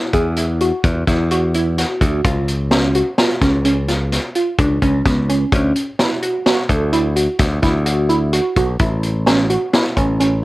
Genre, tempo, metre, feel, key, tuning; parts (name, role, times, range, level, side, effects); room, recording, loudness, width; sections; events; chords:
progressive instrumental, band music in an uneven meter; 128 BPM; 7/4; straight; A4 = 440 Hz
analog pluck; arpeggios; 0.0-10.3 s; B3 to A4; -19 LUFS; right 1 dB; chorus
modern bright picked electric bass; bass; 0.1-10.4 s; A1 to E2; -18 LUFS; equal
vintage drum kit; drums; 0.1-10.3 s; hi-hat, kick drum, snare drum; -19 LUFS; equal
light reverb; cassette tape; -14 LUFS; side -18 dB against mid
0.0-10.4 A section
0.0 N.C.; 2.2 C#; 5.5 D; 8.8 A